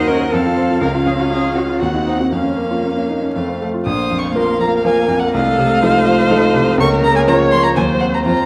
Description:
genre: quick classical-period movement for piano quintet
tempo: 121 BPM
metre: 3/4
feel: straight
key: Bb minor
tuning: A4 = 439 Hz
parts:
  - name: warm violin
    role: melody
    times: 0.0-8.5 s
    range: F5 to Eb6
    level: -23 LUFS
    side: equal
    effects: none
  - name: clear cello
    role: second line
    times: 0.0-8.5 s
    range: F3 to Bb4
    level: -25 LUFS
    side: equal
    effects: none
  - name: clear violin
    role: second line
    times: 0.0-8.5 s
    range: C5 to Gb5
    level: -28 LUFS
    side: equal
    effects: none
  - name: bright grand piano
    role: accompaniment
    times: 0.0-8.5 s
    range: Bb1 to C5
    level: -19 LUFS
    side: equal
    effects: none
  - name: rich viola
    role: accompaniment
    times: 0.0-8.5 s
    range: A3 to Db5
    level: -23 LUFS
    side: equal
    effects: none
room: wet recital hall reverb, RT60 1.5 s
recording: vinyl crackle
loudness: -15 LUFS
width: mono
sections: 0.0-3.9 A section; 3.9-8.5 B section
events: none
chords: 0.3 F; 0.8 Dbadd11; 1.8 Cdim/Eb; 2.3 Bbm/F; 3.3 F; 3.9 Bb5; 5.3 F7/C; 6.8 Bbm/Db; 7.8 Cdim/Eb

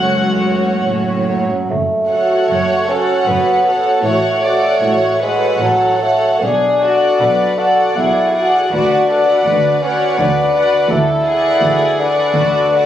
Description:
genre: classical, slow romantic movement for symphony orchestra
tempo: 68-84 BPM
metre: 3/4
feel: rubato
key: F# minor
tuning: A4 = 440 Hz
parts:
  - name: warm studio violin section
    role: melody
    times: 0.0-12.9 s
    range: F#4 to F#5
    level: -22 LUFS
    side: equal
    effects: none
  - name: dark studio violin section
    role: second line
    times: 0.0-12.9 s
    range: F#4 to F#5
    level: -18 LUFS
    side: left 1 dB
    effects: none
  - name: warm studio viola section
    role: accompaniment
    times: 0.0-12.9 s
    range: A3 to B4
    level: -23 LUFS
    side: right 1 dB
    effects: none
  - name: dark studio double bass section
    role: bass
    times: 0.0-12.9 s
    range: F#1 to D2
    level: -24 LUFS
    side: right 3 dB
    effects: none
  - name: warm studio cello section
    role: bass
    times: 0.0-12.9 s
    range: C#2 to B2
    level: -24 LUFS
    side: equal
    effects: none
  - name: warm bassoon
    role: accompaniment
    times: 1.3-12.9 s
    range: F#3 to F#4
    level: -15 LUFS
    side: equal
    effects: none
room: moderate scoring stage reverb, RT60 2.1 s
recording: recorded on a phone in the room, studio ambience, compression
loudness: -12 LUFS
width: side -11 dB against mid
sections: 0.0-1.7 A section; 1.7-12.9 B section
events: none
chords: 0.0 F#m; 4.0 F#m/A; 6.4 Bm7; 8.7 Bm/D; 10.9 Bm7/D

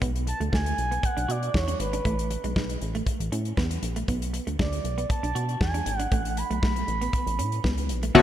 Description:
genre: early-eighties boogie funk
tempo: 118 BPM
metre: 4/4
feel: straight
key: unclear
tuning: A4 = 439 Hz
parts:
  - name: clean electric guitar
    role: riff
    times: 0.0-8.2 s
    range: G#3 to F#4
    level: -33 LUFS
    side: right 3 dB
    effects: lush chorus
  - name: chorused synth bass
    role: bass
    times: 0.0-8.2 s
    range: G#1 to B2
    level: -29 LUFS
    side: equal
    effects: none
  - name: damped 70s drum kit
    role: drums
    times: 0.0-8.2 s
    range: crash cymbal, hi-hat, kick drum, snare drum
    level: -29 LUFS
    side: equal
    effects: none
  - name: expressive synth lead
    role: melody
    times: 0.3-7.9 s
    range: B4 to B5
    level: -31 LUFS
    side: right 3 dB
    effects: chorus, analog delay
  - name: funky polysynth comp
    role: accompaniment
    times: 8.1-8.2 s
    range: D3 to F#4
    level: -11 LUFS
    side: left 3 dB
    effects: chorus
room: moderate lush hall reverb, RT60 2.1 s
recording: dreamy mix soaked in reverb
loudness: -24 LUFS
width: side -11 dB against mid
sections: 0.0-8.2 A section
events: none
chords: 0.0 Bm; 2.0 Asus2; 4.1 Bm7; 6.1 Aadd9

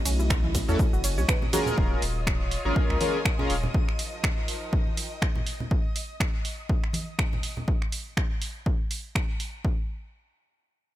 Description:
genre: deep house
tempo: 122 BPM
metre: 4/4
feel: swing 56% on 16ths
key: unclear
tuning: A4 = 445 Hz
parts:
  - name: dark analog pad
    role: sustained chords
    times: 0.0-1.8 s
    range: A3 to Gb4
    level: -37 LUFS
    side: left 2 dB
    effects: chorus, sidechain pumping
  - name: string machine, violins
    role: texture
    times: 0.0-7.7 s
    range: Eb5 to Eb6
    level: -40 LUFS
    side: equal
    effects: ensemble chorus, sidechain pumping
  - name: warbly dusty pluck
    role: arpeggios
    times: 0.1-1.6 s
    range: C#4 to C#5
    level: -35 LUFS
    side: right 2 dB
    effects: chorus, sidechain pumping, ping-pong delay
  - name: round analog bass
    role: bass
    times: 0.1-3.7 s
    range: Eb1 to E2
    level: -28 LUFS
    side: equal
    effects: sidechain pumping
  - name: punchy analog drum machine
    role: drums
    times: 0.1-9.5 s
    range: cabasa, finger snaps, hi-hat, ride cymbal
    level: -32 LUFS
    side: right 2 dB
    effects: none
  - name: bongos and congas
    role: percussion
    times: 0.2-7.7 s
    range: none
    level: -36 LUFS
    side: right 1 dB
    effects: none
  - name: electronic kick drum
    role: drums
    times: 0.3-9.8 s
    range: none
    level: -26 LUFS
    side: equal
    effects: none
  - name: chorused polysynth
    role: stabs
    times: 0.7-3.5 s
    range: C#4 to Bb4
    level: -29 LUFS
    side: equal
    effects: cassette tape, sidechain pumping, ping-pong delay
  - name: clear studio string section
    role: texture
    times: 1.8-5.7 s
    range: F3 to Ab5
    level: -39 LUFS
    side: left 2 dB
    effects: sidechain pumping
room: digital ambience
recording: none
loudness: -24 LUFS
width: side -14 dB against mid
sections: 0.0-1.8 A section; 1.8-9.6 B section; 9.6-11.0 C section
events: drop 0.0-1.8; fade-out on string section 1.8-5.7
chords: 0.0 B9sus4; 1.8 Eb9sus4; 3.7 F9sus4; 5.7 N.C.

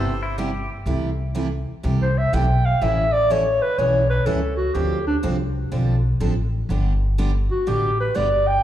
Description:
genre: country, western swing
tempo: 123 BPM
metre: 4/4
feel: swing 66% on 8ths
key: C major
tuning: A4 = 441 Hz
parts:
  - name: mellow clarinet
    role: second line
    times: 0.0-8.6 s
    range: D4 to G5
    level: -21 LUFS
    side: equal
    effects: slapback echo
  - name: pedal steel guitar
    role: second line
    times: 0.0-0.7 s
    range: E4 to A4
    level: -34 LUFS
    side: left 2 dB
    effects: slapback echo
  - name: picked steel-string acoustic guitar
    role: accompaniment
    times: 0.0-8.3 s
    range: C3 to A4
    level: -28 LUFS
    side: right 3 dB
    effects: slapback echo
  - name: upright bass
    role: bass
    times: 0.0-8.6 s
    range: G1 to D2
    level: -22 LUFS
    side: equal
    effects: none
room: moderate plate reverb, RT60 3.1 s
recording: live gig heard through the venue's PA, club reverb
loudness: -18 LUFS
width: side -12 dB against mid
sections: 0.9-8.6 A section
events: clarinet solo 0.9-8.6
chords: 0.0 Cmaj7; 0.9 C6; 2.8 A7; 4.8 Dm7; 6.7 G

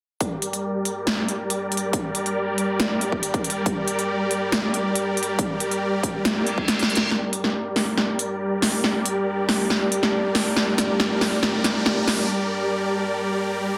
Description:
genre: heavy wobble dubstep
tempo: 139 BPM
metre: 4/4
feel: half-time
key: G minor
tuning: A4 = 440 Hz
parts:
  - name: supersaw chords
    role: sustained chords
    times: 0.2-13.8 s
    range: G3 to D5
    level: -27 LUFS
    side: equal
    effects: sidechain pumping, low-pass filter
  - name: big-room dance drum kit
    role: drums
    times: 0.2-12.2 s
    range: hi-hat, snare drum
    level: -25 LUFS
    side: equal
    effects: none
  - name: electronic kick drum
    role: drums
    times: 0.2-6.7 s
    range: none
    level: -29 LUFS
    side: equal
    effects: high-pass filter on kick, high-pass filter on room
  - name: reverse cymbal and riser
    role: sound effects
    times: 6.4-12.3 s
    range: none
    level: -35 LUFS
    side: equal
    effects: none
  - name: deep dark ambient pad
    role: texture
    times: 8.4-12.3 s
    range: G4 to A5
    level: -32 LUFS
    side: equal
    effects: chorus, built-in reverb, sidechain pumping
room: moderate digital room reverb, RT60 0.9 s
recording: dense, heavily limited modern master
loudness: -23 LUFS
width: mono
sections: 0.2-7.1 A section; 7.1-13.8 B section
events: filter sweep on supersaw synth 0.2-7.1, 7.1-13.8; reverse cymbal 6.4-7.1; kick drops out 6.7-7.1; drum fill 6.7-7.1, 7.1-12.3; build-up 7.1-13.8; break 12.3-13.8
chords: 0.2 Gm

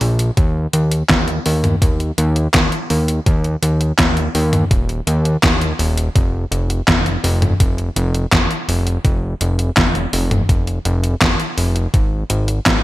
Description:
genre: synthwave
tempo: 83 BPM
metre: 4/4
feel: straight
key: unclear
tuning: A4 = 442 Hz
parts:
  - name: fat analog bass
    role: bass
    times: 0.0-12.8 s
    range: Eb1 to Eb2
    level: -17 LUFS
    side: equal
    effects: sidechain pumping
  - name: detuned 8-bit digital drum machine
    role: drums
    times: 0.0-12.8 s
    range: handclaps, hi-hat, snare drum, toms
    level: -17 LUFS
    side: equal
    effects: overdrive, gated reverb
  - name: electronic kick drum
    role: drums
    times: 0.4-12.8 s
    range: none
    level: -16 LUFS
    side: equal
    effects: overdrive
room: light reverb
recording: bright 1980s-style digital production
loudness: -14 LUFS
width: side -17 dB against mid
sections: 0.0-12.8 A section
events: none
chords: none

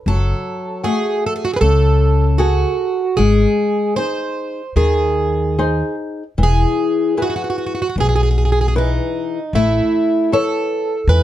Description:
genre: fado-style ballad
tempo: 76 BPM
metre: 4/4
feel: rubato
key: unclear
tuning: A4 = 440 Hz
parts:
  - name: picked plugged-in twelve-string acoustic guitar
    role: melody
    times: 0.1-11.2 s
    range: D#4 to B#4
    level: -19 LUFS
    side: right 3 dB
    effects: none
  - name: flamenco guitar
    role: accompaniment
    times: 0.1-11.2 s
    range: B2 to C#5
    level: -21 LUFS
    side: left 4 dB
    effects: none
  - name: upright bass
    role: bass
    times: 0.1-11.2 s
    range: E1 to E2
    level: -15 LUFS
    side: equal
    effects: none
room: little or no reverb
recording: dark, warm production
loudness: -15 LUFS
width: side -12 dB against mid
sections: 0.0-11.2 A section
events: none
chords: 0.1 F#madd9; 3.2 G#; 6.4 E; 9.5 Aadd9

